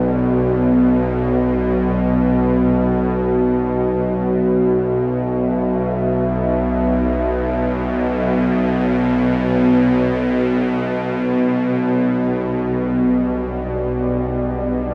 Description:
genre	dark ambient drone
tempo	free time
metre	none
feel	none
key	B minor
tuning	A4 = 445 Hz
part	deep dark ambient pad	sustained chords	0.1-14.9 s	B3 to E5	-28 LUFS	equal	none
part	bowed-like drone	drone	0.0-14.9 s	B1 to B2	-18 LUFS	equal	built-in reverb
room	wet huge ambient reverb, RT60 8.2 s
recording	none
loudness	-18 LUFS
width	mono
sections	0.0-14.9 A section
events	none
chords	0.0 Bm; 10.2 G/B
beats	free time

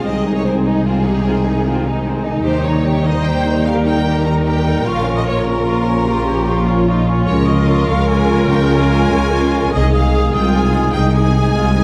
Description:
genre	cinematic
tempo	99 BPM (dotted quarters)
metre	12/8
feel	straight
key	unclear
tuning	A4 = 440 Hz
part	rich chamber violin section	melody	0.0-11.8 s	C4 to Ab4	-28 LUFS	equal	none
part	bright concert flute	second line	0.0-11.8 s	Ab5 to Eb6	-29 LUFS	equal	none
part	clear symphonic violin section	second line	0.0-11.8 s	Ab4 to Bb5	-26 LUFS	equal	none
part	warm clarinet	second line	0.0-11.8 s	Eb4 to Ab4	-28 LUFS	equal	none
part	warm symphonic viola section	accompaniment	0.0-11.8 s	Eb4 to C5	-26 LUFS	equal	none
part	clear trombone section	sustained chords	0.0-11.8 s	Db3 to Ab3	-27 LUFS	equal	none
part	mellow French horn section	sustained chords	0.0-11.8 s	Ab3 to F4	-27 LUFS	equal	none
part	concert harp	arpeggios	0.0-11.8 s	Bb2 to Eb5	-27 LUFS	equal	none
part	rich symphonic double bass section	bass	0.1-11.8 s	Bb1 to Eb2	-20 LUFS	equal	none
part	warm symphonic cello section	bass	0.1-11.8 s	Bb2 to Eb3	-23 LUFS	equal	none
room	moderate scoring stage reverb, RT60 1.9 s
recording	dark, warm production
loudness	-15 LUFS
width	mono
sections	0.0-11.8 A section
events	none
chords	0.1 Ab/C; 2.5 Eb; 4.9 Bbm; 7.3 Db; 9.7 Ab/C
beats	| 0.05 0.66 1.26 1.86 | 2.47 3.07 3.67 4.27 | 4.87 5.47 6.08 6.68 | 7.28 7.89 8.50 9.11 | 9.73 10.33 10.94 11.55

